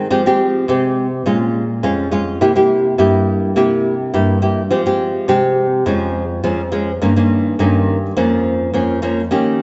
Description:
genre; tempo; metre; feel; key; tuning
samba; 104 BPM; 4/4; straight; F minor; A4 = 436 Hz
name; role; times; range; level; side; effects
nylon-string guitar; solo; 0.0-9.6 s; F2 to G4; -16 LUFS; equal; lush chorus
room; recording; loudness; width
wet church reverb, RT60 2.4 s; dreamy mix soaked in reverb, nothing above 7.8 kHz; -16 LUFS; mono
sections
0.0-9.6 A section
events
none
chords
0.1 Fmadd9; 1.3 Bbm7; 2.4 C7; 4.7 Fmadd9; 5.9 Db/F; 7.0 Eb7/G; 8.2 Bbm/F

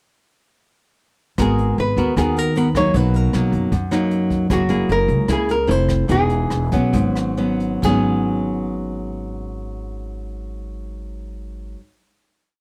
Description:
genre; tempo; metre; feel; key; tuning
bossa nova; 130-154 BPM; 4/4; straight; G# minor; A4 = 440 Hz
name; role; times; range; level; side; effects
nylon-string guitar; melody; 1.4-11.8 s; F#4 to C#5; -24 LUFS; equal; none
nylon-string guitar; accompaniment; 1.4-11.8 s; F#2 to A#4; -23 LUFS; equal; none
upright bass; bass; 1.4-11.7 s; E1 to F#2; -25 LUFS; equal; none
jazz brush drum kit; drums; 1.4-7.9 s; hi-hat, kick drum, rim click, splash cymbal; -30 LUFS; equal; none
room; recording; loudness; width
small room ambience; dry, close 1970s-style studio recording; -19 LUFS; mono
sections
1.4-7.8 A section; 7.8-11.5 final chord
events
slowing down 4.5-7.8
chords
1.4 G#m9; 2.9 Bmaj7; 4.5 F#9; 5.7 Fmaj7; 6.1 Emaj7; 6.9 G#m7

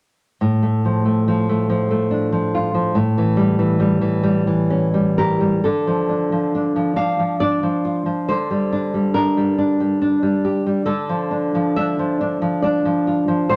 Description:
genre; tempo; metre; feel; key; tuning
romantic piece for solo classical guitar; 69 BPM; 3/4; uneven beats, rubato; D minor; A4 = 440 Hz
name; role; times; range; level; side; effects
nylon-string guitar; solo; 0.4-13.6 s; A2 to F5; -19 LUFS; equal; none
room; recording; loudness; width
moderate large studio reverb, RT60 1.0 s; none; -19 LUFS; mono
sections
0.4-5.6 A section; 5.6-13.6 B section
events
none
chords
0.4 Dm/A; 3.0 A7; 5.6 Dm; 8.3 Gm/D; 10.9 Dm

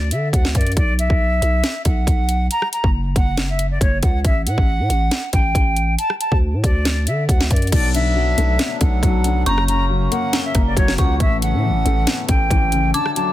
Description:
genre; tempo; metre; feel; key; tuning
hip hop, trap; 138 BPM; 4/4; half-time; B minor; A4 = 440 Hz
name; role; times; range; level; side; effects
silver concert flute; melody; 0.0-13.3 s; C#5 to A#5; -22 LUFS; right 1 dB; ping-pong delay
growling 808-style bass; bass; 0.0-12.9 s; F#1 to D3; -19 LUFS; equal; none
trap drum kit; drums; 0.1-13.3 s; crash cymbal, hi-hat, kick drum, rim click, snare drum; -18 LUFS; equal; none
felt-muted upright piano; accompaniment; 7.7-13.3 s; F#2 to C#4; -23 LUFS; left 6 dB; none
pedal harmonium; sustained chords; 7.7-13.3 s; E3 to A#4; -31 LUFS; right 1 dB; none
dark detuned synth bell; second line; 9.5-13.3 s; A#5 to D6; -27 LUFS; left 1 dB; chorus, phaser, ping-pong delay
room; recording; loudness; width
little or no reverb; dense, heavily limited modern master; -15 LUFS; side -14 dB against mid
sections
0.0-7.7 A section; 7.7-13.3 B section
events
break 12.9-13.3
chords
0.0 D; 0.8 B5; 2.5 F#5; 4.2 F#m/A; 6.0 D; 7.7 Bm7; 9.5 F#; 11.2 Aadd9

